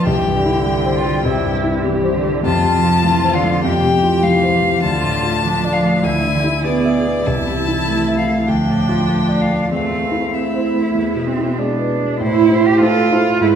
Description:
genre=quick classical-period movement for piano quartet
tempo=99 BPM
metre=4/4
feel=straight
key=A minor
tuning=A4 = 440 Hz
part: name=rich violin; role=melody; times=0.0-13.6 s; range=A4 to A5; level=-21 LUFS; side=left 4 dB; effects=none
part: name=rich cello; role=second line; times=0.0-13.5 s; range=B2 to G4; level=-19 LUFS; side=right 4 dB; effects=none
part: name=dark grand piano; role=accompaniment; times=0.0-13.6 s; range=C2 to E5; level=-18 LUFS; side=left 1 dB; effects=none
part: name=rich viola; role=accompaniment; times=0.0-13.6 s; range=B3 to C5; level=-24 LUFS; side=equal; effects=none
room=wet recital hall reverb, RT60 1.5 s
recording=heard from further back in the room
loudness=-14 LUFS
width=side -8 dB against mid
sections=0.0-12.2 A section; 12.2-13.6 B section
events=none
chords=0.1 C; 2.4 F; 4.8 Dm; 6.0 E7/D; 7.3 Am/C; 8.5 Dm; 9.7 Am/E; 11.0 E; 12.2 Am

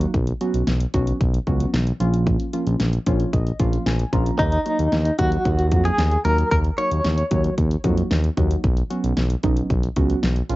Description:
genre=synth-pop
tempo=113 BPM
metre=4/4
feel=straight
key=Eb minor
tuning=A4 = 439 Hz
part: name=muted felt-like synth keys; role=accompaniment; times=0.0-10.6 s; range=F3 to Bb5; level=-26 LUFS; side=right 2 dB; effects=chorus, cassette tape, plate reverb
part: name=smooth gliding synth bass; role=bass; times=0.0-10.6 s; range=Bb1 to F2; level=-21 LUFS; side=equal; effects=none
part: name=pop drum kit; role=drums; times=0.0-10.6 s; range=hi-hat, kick drum, snare drum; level=-24 LUFS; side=equal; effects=none
part: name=direct-recorded clean electric guitar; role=melody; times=4.4-7.5 s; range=Eb4 to Db5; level=-22 LUFS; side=equal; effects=tremolo, plate reverb
room=light reverb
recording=home recording on cassette, nothing above 7.7 kHz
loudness=-18 LUFS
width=side -18 dB against mid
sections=0.0-10.6 A section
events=synth keys fill 2.8-4.4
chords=0.1 Bsus2; 2.0 Bbm; 4.4 Ebm; 8.6 Bsus2

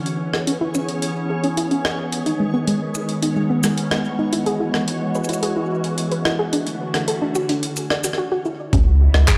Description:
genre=IDM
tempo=109 BPM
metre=4/4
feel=straight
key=C# minor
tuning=A4 = 440 Hz
part: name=soft string machine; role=sustained chords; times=0.0-9.4 s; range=C#3 to G#4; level=-26 LUFS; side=equal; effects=phaser, ensemble chorus
part: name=backwards swelling texture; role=texture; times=0.0-8.2 s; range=C#4 to C#5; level=-37 LUFS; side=equal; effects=built-in reverb, sidechain pumping
part: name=jungle sampler-style drum kit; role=drums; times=0.1-9.4 s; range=handclaps, hi-hat, rim click, shaker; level=-27 LUFS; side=equal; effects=studio reverb
part: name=soft round pluck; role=arpeggios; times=0.3-9.4 s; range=G#3 to D5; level=-26 LUFS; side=equal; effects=chorus, delay
part: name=round analog bass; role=bass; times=8.7-9.2 s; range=C#2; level=-15 LUFS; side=equal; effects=none
part: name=electronic kick drum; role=drums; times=8.7-9.4 s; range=none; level=-18 LUFS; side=equal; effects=studio reverb
room=moderate lush hall reverb, RT60 2.0 s, digital ambience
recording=played on a big sound system in a bare room, large studio reverb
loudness=-21 LUFS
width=mono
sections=0.0-8.7 A section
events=filter sweep on string machine 0.0-8.7; filter sweep on synth arpeggio sound 0.0-8.7; break 8.2-8.7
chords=0.0 C#m7; 2.1 G#m; 4.3 Eadd9; 6.5 Dadd9; 8.7 C#m7

